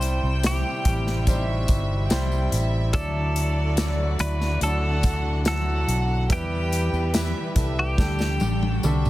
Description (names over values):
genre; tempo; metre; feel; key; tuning
pop ballad; 71 BPM; 4/4; straight; unclear; A4 = 440 Hz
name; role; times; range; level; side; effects
twelve-string electric guitar; melody; 0.0-9.1 s; G4 to C5; -30 LUFS; equal; none
warm studio violin section; second line; 0.0-9.1 s; D5 to G5; -34 LUFS; right 1 dB; digital delay
warm concert grand piano; accompaniment; 0.0-9.1 s; C3 to D5; -30 LUFS; equal; none
warm studio string section; sustained chords; 0.0-9.1 s; C3 to B4; -36 LUFS; left 1 dB; none
fingered electric bass; bass; 0.0-9.1 s; G1 to E2; -24 LUFS; equal; none
modern studio drum kit; drums; 0.0-9.1 s; hi-hat, kick drum, snare drum, toms; -26 LUFS; equal; none
tambourine; percussion; 0.0-9.1 s; none; -41 LUFS; left 6 dB; none
room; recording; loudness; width
studio ambience; dense, heavily limited modern master; -21 LUFS; side -16 dB against mid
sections
0.0-9.1 A section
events
drum fill 8.0-9.1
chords
0.0 C; 2.9 Dadd9; 6.3 Em; 8.0 Dsus4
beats
0.44 1.27 2.10 | 2.94 3.77 4.61 5.45 | 6.29 7.14 7.98 8.84